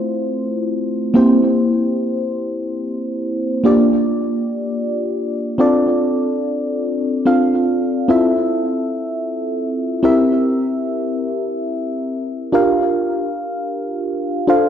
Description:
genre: pop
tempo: free time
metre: none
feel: none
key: unclear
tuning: A4 = 440 Hz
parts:
  - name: mellow FM electric piano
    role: solo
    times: 0.0-14.7 s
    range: A3 to F5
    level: -16 LUFS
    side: equal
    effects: chorus, phaser, digital delay
room: wet lush hall reverb, RT60 2.2 s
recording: dark, warm production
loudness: -16 LUFS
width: side -9 dB against mid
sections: 0.0-14.7 A section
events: none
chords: 0.0 Fmaj7; 1.1 C7; 3.6 Gm7; 5.6 Dm7; 8.1 Fmaj7; 10.0 C7; 12.5 Gm7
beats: free time

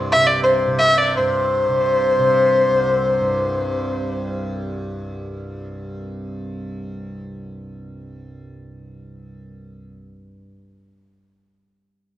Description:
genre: indian classical, Hindustani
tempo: 170 BPM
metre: 7/4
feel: straight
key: unclear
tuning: A4 = 440 Hz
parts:
  - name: tanpura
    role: drone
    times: 0.0-10.4 s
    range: C2 to C3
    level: -26 LUFS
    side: right 1 dB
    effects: none
  - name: warm violin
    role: melody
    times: 0.1-4.4 s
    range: C5 to E5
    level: -16 LUFS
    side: left 1 dB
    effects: slapback echo
room: moderate recital hall reverb, RT60 1.4 s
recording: worn, warbling old tape, cassette tape, warbly pitch drift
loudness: -16 LUFS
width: side -13 dB against mid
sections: 0.0-1.2 A section; 1.2-3.6 B section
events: none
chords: none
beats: 0.11 0.46 0.82 | 1.17 1.53 1.88 2.23 2.58 2.94 3.29

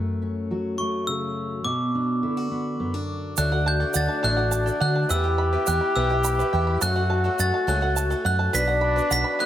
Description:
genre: indie folk with a building arrangement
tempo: 70 BPM (dotted quarters)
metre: 6/8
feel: straight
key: D major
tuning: A4 = 441 Hz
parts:
  - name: fingerpicked steel-string acoustic guitar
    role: accompaniment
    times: 0.0-5.1 s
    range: F#2 to F#4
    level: -28 LUFS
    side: equal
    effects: none
  - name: glockenspiel with brass mallets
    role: melody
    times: 0.8-9.5 s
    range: C#6 to B6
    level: -27 LUFS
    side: right 1 dB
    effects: none
  - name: bright trombone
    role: second line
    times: 3.4-9.5 s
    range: D4 to G4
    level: -27 LUFS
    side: left 1 dB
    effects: none
  - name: picked twelve-string acoustic guitar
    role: accompaniment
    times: 3.4-9.5 s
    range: F#2 to G4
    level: -28 LUFS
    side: left 4 dB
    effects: none
  - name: bluegrass banjo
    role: arpeggios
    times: 3.4-9.5 s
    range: A4 to B5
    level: -31 LUFS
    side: right 8 dB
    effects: digital delay
  - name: hollow-body short-scale fingered electric bass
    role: bass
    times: 3.4-9.2 s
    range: A1 to D3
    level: -24 LUFS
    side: equal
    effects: none
  - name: egg shaker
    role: percussion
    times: 3.4-9.2 s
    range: none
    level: -30 LUFS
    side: right 13 dB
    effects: none
room: light reverb, small room ambience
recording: none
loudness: -21 LUFS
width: side -11 dB against mid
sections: 0.0-3.4 A section; 3.4-9.5 B section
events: none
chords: 0.0 F#m; 1.6 Bm; 3.4 D; 5.1 Em; 6.8 F#m; 8.5 Bm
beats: 0.78 | 1.65 2.51 | 3.38 4.24 | 5.10 5.96 | 6.82 7.68 | 8.54 9.40

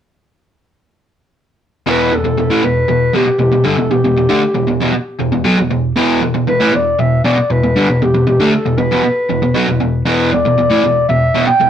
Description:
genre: rock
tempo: 117 BPM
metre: 4/4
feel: straight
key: E minor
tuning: A4 = 440 Hz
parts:
  - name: dark clarinet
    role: melody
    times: 1.9-11.7 s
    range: G4 to G5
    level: -15 LUFS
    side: left 1 dB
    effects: digital delay
  - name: overdriven semi-hollow guitar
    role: riff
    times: 1.9-11.7 s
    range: E2 to A3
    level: -13 LUFS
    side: equal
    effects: none
room: moderate studio reverb, RT60 0.5 s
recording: rough rehearsal-room recording, tube saturation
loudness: -11 LUFS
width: side -9 dB against mid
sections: 1.9-11.7 A section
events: none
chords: 1.9 Em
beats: | 1.87 2.38 2.89 3.40 | 3.92 4.43 4.94 5.45 | 5.97 6.48 6.99 7.50 | 8.02 8.53 9.04 9.55 | 10.07 10.58 11.09 11.61

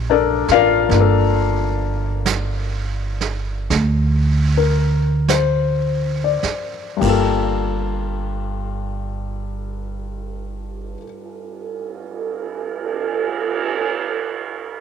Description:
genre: jazz ballad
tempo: 33-48 BPM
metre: 4/4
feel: swing 67% on 8ths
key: G minor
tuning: A4 = 441 Hz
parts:
  - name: warm grand piano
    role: accompaniment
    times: 0.0-14.8 s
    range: G2 to F5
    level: -19 LUFS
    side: left 10 dB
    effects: none
  - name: upright bass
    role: bass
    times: 0.0-10.9 s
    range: G1 to D2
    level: -20 LUFS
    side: right 2 dB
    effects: none
  - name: vintage brush drum kit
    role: drums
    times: 0.5-13.8 s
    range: brushed snare drum, crash cymbal, cymbal swell, hi-hat, kick drum, snare drum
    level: -25 LUFS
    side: right 9 dB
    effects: none
room: studio reverb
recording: 1960s-style stereo with parts hard left and right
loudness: -17 LUFS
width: side -7 dB against mid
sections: 0.0-7.0 A section; 7.0-14.2 B section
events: slowing down 0.0-7.0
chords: 0.0 Gm9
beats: | 0.92 2.26 3.71 5.29 | 7.02 8.82 10.60 12.39

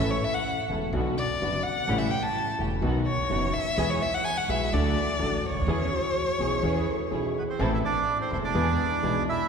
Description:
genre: tango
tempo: 126 BPM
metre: 4/4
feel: rubato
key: unclear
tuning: A4 = 440 Hz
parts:
  - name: warm violin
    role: second line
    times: 0.0-7.4 s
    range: C#5 to A5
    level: -29 LUFS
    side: left 1 dB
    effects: none
  - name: warm concert grand piano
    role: accompaniment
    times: 0.0-9.2 s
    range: E1 to A4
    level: -29 LUFS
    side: left 2 dB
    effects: none
  - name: dark studio string section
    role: stabs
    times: 0.0-9.2 s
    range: A3 to A4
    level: -35 LUFS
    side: right 1 dB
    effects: none
  - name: upright bass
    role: bass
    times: 0.0-9.2 s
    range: E1 to E2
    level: -31 LUFS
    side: right 2 dB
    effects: none
  - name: vibraphone with soft mallets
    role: second line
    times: 5.9-7.6 s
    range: F#4 to B4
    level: -34 LUFS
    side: right 1 dB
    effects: none
  - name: bandoneon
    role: melody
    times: 7.4-9.5 s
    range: B3 to E5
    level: -27 LUFS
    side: right 5 dB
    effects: none
room: wet church reverb, RT60 2.8 s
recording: recorded in a church or concert hall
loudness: -24 LUFS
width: side -6 dB against mid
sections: 0.0-7.6 A section; 7.6-9.5 B section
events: violin solo 0.0-7.6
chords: 0.0 A; 0.9 Bm; 1.9 A7; 2.8 B; 3.8 E; 4.7 D; 5.7 E6; 7.6 Am; 8.6 E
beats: 0.46 0.93 1.41 | 1.88 2.35 2.83 3.31 | 3.78 4.25 4.73 5.20 | 5.68 6.16 6.63 7.12 | 7.60 8.08 8.55 9.03

